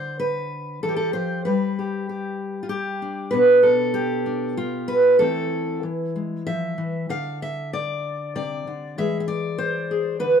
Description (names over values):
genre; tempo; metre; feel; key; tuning
folk, solo fingerstyle acoustic guitar; 96 BPM; 3/4; rubato; unclear; A4 = 440 Hz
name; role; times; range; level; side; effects
fingerpicked steel-string acoustic guitar; solo; 0.0-10.4 s; B2 to F5; -21 LUFS; equal; none
room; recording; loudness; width
moderate stone room reverb, RT60 1.0 s; band playing live in one room; -21 LUFS; side -7 dB against mid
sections
0.0-10.4 A section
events
none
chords
0.0 Dm; 1.5 G; 3.3 Bdim; 5.2 Am/E; 5.8 E; 7.1 Cadd9; 9.0 E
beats
0.21 0.84 | 1.47 2.09 2.71 | 3.33 3.94 4.56 | 5.19 5.82 6.46 | 7.10 7.73 8.36 | 8.97 9.58 10.20